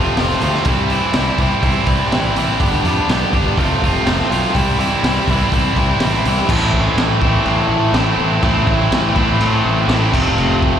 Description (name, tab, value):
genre	classic rock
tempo	124 BPM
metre	4/4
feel	straight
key	A minor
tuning	A4 = 440 Hz
part	biting overdriven guitar	riff	0.0-10.8 s	F2 to G4	-16 LUFS	equal	none
part	fuzz fingered electric bass	bass	0.0-10.8 s	F1 to A2	-20 LUFS	equal	overdrive
part	raw garage drum kit	drums	0.2-10.7 s	crash cymbal, hi-hat, kick drum, snare drum	-19 LUFS	equal	none
room	little or no reverb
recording	live gig heard through the venue's PA, recital hall reverb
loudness	-13 LUFS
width	side -9 dB against mid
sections	0.0-6.5 A section; 6.5-10.8 B section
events	none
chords	0.0 F; 0.7 C; 2.6 G; 3.6 F; 4.5 C; 6.5 Am; 10.1 F